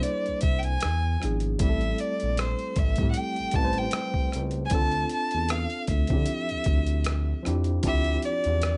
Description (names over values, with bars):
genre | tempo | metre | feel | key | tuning
R&B, neo-soul | 77 BPM | 4/4 | swing 54% on 16ths | D minor | A4 = 437 Hz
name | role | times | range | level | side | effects
rich violin | melody | 0.0-8.8 s | C5 to A5 | -32 LUFS | equal | none
mellow tine electric piano | accompaniment | 0.0-8.8 s | E3 to C5 | -34 LUFS | equal | none
smooth gliding synth bass | bass | 0.0-8.8 s | G#1 to D3 | -30 LUFS | equal | none
boom bap sampler-style drum kit | drums | 0.0-8.8 s | hi-hat, kick drum, rim click | -30 LUFS | equal | none
room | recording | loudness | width
light reverb | nothing above 10.4 kHz | -26 LUFS | mono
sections
0.0-8.8 A section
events
none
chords
0.0 C13; 0.8 E7b9; 1.6 Am7; 4.7 Dm9